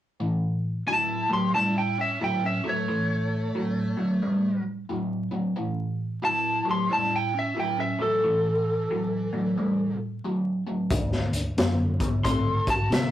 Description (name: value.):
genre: blues rock power trio and southern rock.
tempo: 90 BPM.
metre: 4/4.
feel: swing 63% on 8ths.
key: A mixolydian.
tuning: A4 = 442 Hz.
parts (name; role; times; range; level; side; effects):
overdriven electric guitar; riff; 0.2-13.1 s; A2 to C4; -27 LUFS; equal; phaser.
lightly driven lead guitar; melody; 0.9-13.1 s; A4 to C6; -26 LUFS; equal; none.
bluesy overdriven lead guitar; second line; 0.9-13.1 s; E3 to A4; -34 LUFS; equal; distortion.
vintage muted fingered electric bass; bass; 10.9-13.1 s; D2 to C3; -28 LUFS; equal; none.
raw garage drum kit; drums; 10.9-13.1 s; hi-hat, kick drum, snare drum; -24 LUFS; left 1 dB; none.
room: moderate studio reverb, RT60 0.5 s.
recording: rough rehearsal-room recording, warm saturation, vinyl crackle.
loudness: -23 LUFS.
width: side -12 dB against mid.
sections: 0.2-13.1 A section.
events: none.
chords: 0.2 A7; 10.9 D7.